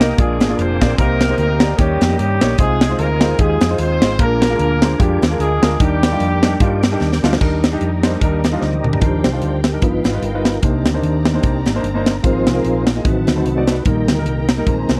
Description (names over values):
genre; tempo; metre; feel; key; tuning
uptempo gospel; 149 BPM; 4/4; swing 57% on 8ths; Eb major; A4 = 441 Hz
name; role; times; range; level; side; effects
warm horn section; melody; 0.0-7.0 s; G3 to C5; -22 LUFS; equal; none
warm concert grand piano; accompaniment; 0.0-15.0 s; G2 to Eb5; -24 LUFS; equal; none
tonewheel organ; sustained chords; 0.0-15.0 s; Eb3 to Eb6; -26 LUFS; equal; slow rotary speaker, chorus vibrato
hollow-body short-scale fingered electric bass; bass; 0.0-15.0 s; F1 to G2; -22 LUFS; equal; none
crisp fusion drum kit; drums; 0.0-15.0 s; crash cymbal, hi-hat, kick drum, snare drum, toms; -19 LUFS; equal; none
warm studio string section; sustained chords; 7.4-15.0 s; Bb3 to Bb5; -34 LUFS; equal; none
room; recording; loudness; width
light reverb; dry, close 1970s-style studio recording; -16 LUFS; mono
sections
0.0-7.4 A section; 7.4-9.0 B section; 9.0-15.0 C section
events
drum fill 7.0-7.4, 8.6-9.0; tonewheel organ solo 9.0-15.0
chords
0.2 Bb7; 1.0 Cm7; 1.8 Eb7; 2.6 Ab6/C; 4.2 Bb7; 5.8 Ebmaj7; 9.8 G7alt; 10.6 Cm9; 12.2 Ab69; 13.1 Adim7; 13.9 Eb/Bb